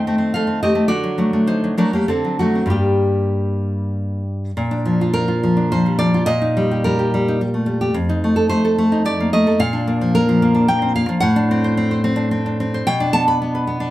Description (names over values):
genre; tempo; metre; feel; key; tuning
romantic piece for solo classical guitar; 94-112 BPM; 3/4; rubato; G minor, Bb major from 4.6 s; A4 = 441 Hz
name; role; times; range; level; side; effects
nylon-string guitar; solo; 0.0-13.9 s; F2 to B5; -16 LUFS; equal; none
room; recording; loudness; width
wet studio reverb, RT60 0.5 s; heard from further back in the room; -16 LUFS; side -15 dB against mid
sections
0.0-4.6 A section; 4.6-13.9 B section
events
none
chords
0.0 Am7b5/Eb; 0.9 D; 2.1 D7; 2.7 Gm; 4.6 Bb; 6.3 Eb/Bb; 8.0 F7; 9.6 Bb; 11.2 D7/A; 12.9 Bm7